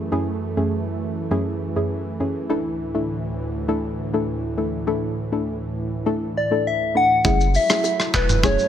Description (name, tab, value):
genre	afrobeats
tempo	101 BPM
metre	4/4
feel	straight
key	F# minor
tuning	A4 = 440 Hz
part	warm analog pad	sustained chords	0.0-8.7 s	D2 to E4	-27 LUFS	right 2 dB	chorus
part	soft round pluck	accompaniment	0.1-8.7 s	F#2 to A4	-24 LUFS	left 2 dB	chorus
part	soft struck synth lead	melody	6.4-8.7 s	B4 to F#5	-19 LUFS	left 2 dB	chorus
part	warm sub bass	bass	7.2-8.6 s	E1 to F#1	-21 LUFS	equal	none
part	tight metal drum kit	drums	7.2-8.7 s	handclaps, hi-hat, kick drum, rim click, shaker, toms	-21 LUFS	equal	vintage 12-bit sampler grit
part	congas and bongos	percussion	7.3-8.6 s	none	-30 LUFS	right 8 dB	none
room	light reverb, studio ambience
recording	none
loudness	-20 LUFS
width	side -10 dB against mid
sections	0.0-7.2 A section; 7.2-8.7 B section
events	none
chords	0.0 F#m7; 2.5 Dsus2; 7.2 F#m7